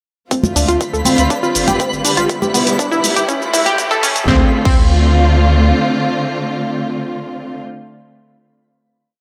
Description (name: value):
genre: progressive house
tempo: 121 BPM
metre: 4/4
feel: straight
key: D dorian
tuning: A4 = 441 Hz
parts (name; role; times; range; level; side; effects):
- warm symphonic string section; sustained chords; 0.3-7.6 s; C#3 to F4; -20 LUFS; equal; sidechain pumping
- analog pluck; arpeggios; 0.3-4.8 s; B3 to A4; -20 LUFS; equal; chorus, sidechain pumping, tape echo
- big-room dance drum kit; drums; 0.3-4.8 s; crash cymbal, hi-hat, shaker, snare drum; -22 LUFS; equal; none
- electronic kick drum; drums; 0.3-4.8 s; none; -20 LUFS; equal; high-pass filter on kick
- riser; sound effects; 2.4-4.3 s; none; -31 LUFS; equal; none
- twinkling granular texture; texture; 0.8-4.3 s; B4 to B5; -28 LUFS; equal; built-in reverb, sidechain pumping
- congas and cowbell; percussion; 0.4-3.8 s; none; -24 LUFS; equal; sidechain pumping on perc
- saturated sub bass; bass; 0.6-5.7 s; E1 to D2; -17 LUFS; equal; sidechain pumping
room: light reverb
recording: high-pass filter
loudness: -15 LUFS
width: mono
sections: 0.3-4.3 build; 4.3-8.2 final chord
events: build-up 0.3-4.3; filter sweep on synth pluck 0.3-4.3; drum fill 2.3-4.3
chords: 0.3 Dm7; 1.3 G7sus4; 2.3 Em7; 3.3 A7; 4.3 Dm7